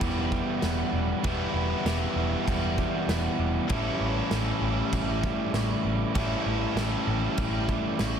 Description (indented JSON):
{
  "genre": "rock, shoegaze and dream pop",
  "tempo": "98 BPM",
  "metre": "4/4",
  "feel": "straight",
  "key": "unclear",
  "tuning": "A4 = 440 Hz",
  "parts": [
    { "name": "twelve-string electric guitar", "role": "arpeggios", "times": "0.0-8.2 s", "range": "G3 to C#4", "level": "-40 LUFS", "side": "right 10 dB", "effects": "none" },
    { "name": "biting overdriven guitar", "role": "riff", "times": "0.0-8.2 s", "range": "A2 to E4", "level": "-30 LUFS", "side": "left 8 dB", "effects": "wide subtle chorus" },
    { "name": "biting overdriven guitar", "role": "riff", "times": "0.0-8.2 s", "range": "E2 to E4", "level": "-30 LUFS", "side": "right 13 dB", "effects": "reverse reverb" },
    { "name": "vintage muted picked electric bass", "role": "bass", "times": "0.0-8.2 s", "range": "E1 to A1", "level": "-30 LUFS", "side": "equal", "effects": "none" },
    { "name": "loose indie drum kit", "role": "drums", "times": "0.0-8.1 s", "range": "crash cymbal, kick drum, snare drum", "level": "-32 LUFS", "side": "equal", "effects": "none" }
  ],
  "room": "light reverb, studio ambience",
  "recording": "dense, heavily limited modern master",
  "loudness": "-25 LUFS",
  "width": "side -8 dB against mid",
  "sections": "0.0-8.2 A section",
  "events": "none",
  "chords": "0.0 Em; 3.7 A7"
}